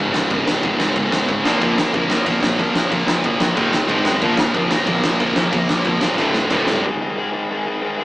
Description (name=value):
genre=punk rock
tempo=184 BPM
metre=4/4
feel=straight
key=unclear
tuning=A4 = 439 Hz
part: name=distorted electric guitar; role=riff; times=0.0-8.0 s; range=Db2 to Bb3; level=-24 LUFS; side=left 1 dB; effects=distortion
part: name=scooped high-gain guitar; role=riff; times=0.0-6.8 s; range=Db2 to Bb3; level=-19 LUFS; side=equal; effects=distortion
part: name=sludgy distorted guitar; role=riff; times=0.0-6.8 s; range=Db2 to Bb3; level=-24 LUFS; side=right 1 dB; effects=overdrive
part: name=fuzz picked electric bass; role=bass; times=0.0-6.8 s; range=Db1 to Gb2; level=-26 LUFS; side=equal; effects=overdrive
part: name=big rock drum kit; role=drums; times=0.1-6.7 s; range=crash cymbal, kick drum, snare drum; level=-21 LUFS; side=equal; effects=none
room=moderate booth ambience, RT60 0.2 s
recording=rough rehearsal-room recording, tube saturation, small speaker sound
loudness=-16 LUFS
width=side -18 dB against mid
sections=0.0-6.8 A section; 6.8-8.0 B section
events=drum fill 6.2-6.8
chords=0.0 Db5; 1.4 Bb5; 3.6 Eb5; 3.9 Ab5; 4.2 Bb5; 6.2 D5; 6.8 Ab5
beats=| 0.30 0.63 0.96 1.28 | 1.61 1.94 2.27 2.59 | 2.92 3.25 3.57 3.90 | 4.22 4.55 4.88 5.20 | 5.53 5.86 6.18 6.51 | 6.83 7.16 7.49 7.81